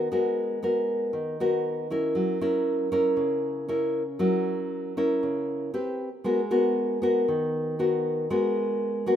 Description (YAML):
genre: bossa nova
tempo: 117 BPM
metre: 4/4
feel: straight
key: G# minor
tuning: A4 = 440 Hz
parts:
  - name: nylon-string guitar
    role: solo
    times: 0.0-9.2 s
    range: C#3 to B4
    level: -24 LUFS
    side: equal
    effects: none
room: light reverb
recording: rough home demo mix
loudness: -24 LUFS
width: side -10 dB against mid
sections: 0.0-9.2 A section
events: none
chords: 0.0 G#m9; 2.2 F#7; 5.7 Gadd11/C; 6.2 G#m9